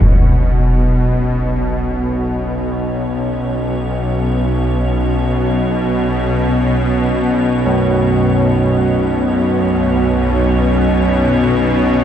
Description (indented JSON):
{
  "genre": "ambient",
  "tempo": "free time",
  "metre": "none",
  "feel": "none",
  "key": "unclear",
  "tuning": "A4 = 442 Hz",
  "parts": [
    { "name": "rich chamber cello section", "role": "sustained chords", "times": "0.0-12.0 s", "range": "B2 to C#4", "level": "-23 LUFS", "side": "equal", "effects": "none" },
    { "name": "bowed-like drone", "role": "drone", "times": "0.0-12.0 s", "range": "B1 to B2", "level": "-15 LUFS", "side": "equal", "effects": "built-in reverb" },
    { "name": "icy glass pad", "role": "texture", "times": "1.2-12.0 s", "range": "C#5", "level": "-28 LUFS", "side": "right 2 dB", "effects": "chorus, built-in reverb" },
    { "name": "carillon bells", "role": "arpeggios", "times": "7.7-12.0 s", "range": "F#3", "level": "-19 LUFS", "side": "equal", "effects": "tape echo" }
  ],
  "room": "moderate huge ambient reverb, RT60 8.0 s",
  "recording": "dark, warm production",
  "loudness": "-13 LUFS",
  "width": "side -9 dB against mid",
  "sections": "0.0-12.0 A section",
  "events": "fade-in on cello section 0.0-12.0; fade-in on ambient pad 0.0-12.0",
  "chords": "0.0 Bsus2"
}